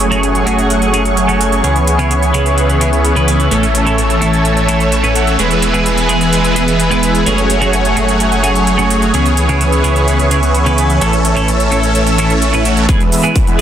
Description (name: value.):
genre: EDM, festival progressive house.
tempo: 128 BPM.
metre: 4/4.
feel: straight.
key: E major.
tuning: A4 = 441 Hz.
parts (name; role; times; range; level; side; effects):
lush unison pad; sustained chords; 0.0-13.6 s; G#3 to E6; -19 LUFS; equal; chorus, phaser, sidechain pumping.
supersaw chords; riff; 0.0-13.6 s; E3 to C#5; -14 LUFS; equal; phaser, vintage 12-bit sampler grit, sidechain pumping, low-pass filter, tape echo.
saturated sub bass; bass; 0.0-12.9 s; E1 to C#2; -16 LUFS; equal; sidechain pumping.
electronic hi-hat and shaker; drums; 0.0-13.6 s; none; -22 LUFS; right 3 dB; high-pass filter on hats, high-pass filter on cymbals, high-pass filter on perc, high-pass filter on snare.
twelve-string electric guitar; accompaniment; 0.1-13.6 s; A2 to B4; -18 LUFS; right 2 dB; phaser, sidechain pumping, tape echo.
swell and riser; sound effects; 12.2-13.6 s; none; -28 LUFS; right 5 dB; none.
electronic kick drum; drums; 12.9-13.5 s; none; -12 LUFS; equal; none.
room: light reverb, digital ambience.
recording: dense, heavily limited modern master.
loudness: -10 LUFS.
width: side -10 dB against mid.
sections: 0.0-12.9 A section.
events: filter sweep on supersaw synth 0.0-12.9; swell 12.2-12.9.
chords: 0.0 F#madd9; 1.6 C#m7; 3.5 A; 5.4 E; 7.3 F#madd9; 9.1 C#m7; 11.0 A; 12.9 E.